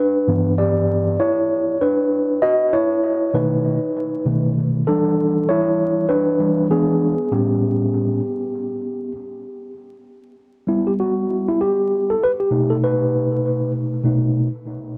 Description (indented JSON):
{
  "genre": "hip hop",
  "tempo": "98 BPM",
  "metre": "4/4",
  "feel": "swing 58% on 16ths",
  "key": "G lydian",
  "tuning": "A4 = 443 Hz",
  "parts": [
    { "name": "mellow tine electric piano", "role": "solo", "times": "0.0-14.5 s", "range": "G2 to D#5", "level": "-20 LUFS", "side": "equal", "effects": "analog delay" }
  ],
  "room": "moderate small room reverb, RT60 0.5 s",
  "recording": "dry, gritty hardware recording, transformer saturation, vinyl crackle",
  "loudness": "-19 LUFS",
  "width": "mono",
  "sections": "0.0-9.8 A section; 9.8-15.0 B section",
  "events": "tine electric piano solo 0.0-9.8, 9.8-15.0",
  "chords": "0.0 G6; 2.4 B7; 4.9 Em7; 6.7 E7; 7.3 A9; 9.8 G; 12.2 B7"
}